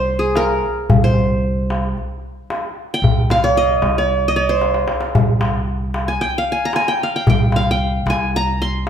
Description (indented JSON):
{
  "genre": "Arabic maqam ensemble",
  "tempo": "113 BPM",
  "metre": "4/4",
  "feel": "straight",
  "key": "C maqam bayati",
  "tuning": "A4 = 439 Hz",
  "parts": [
    { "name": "qanun", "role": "melody", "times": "0.0-8.9 s", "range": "Ab4 to C6", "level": "-18 LUFS", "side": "right 1 dB", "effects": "none" },
    { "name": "upright bass", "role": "bass", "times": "0.0-8.9 s", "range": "C2", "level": "-21 LUFS", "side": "equal", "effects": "none" },
    { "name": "darbuka", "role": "percussion", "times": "0.4-8.9 s", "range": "none", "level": "-19 LUFS", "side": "left 1 dB", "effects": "none" }
  ],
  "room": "wet large studio reverb, RT60 1.3 s",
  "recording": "band playing live in one room",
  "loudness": "-15 LUFS",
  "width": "side -8 dB against mid",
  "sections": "0.0-8.9 A section",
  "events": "drum fill 4.6-5.2",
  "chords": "none"
}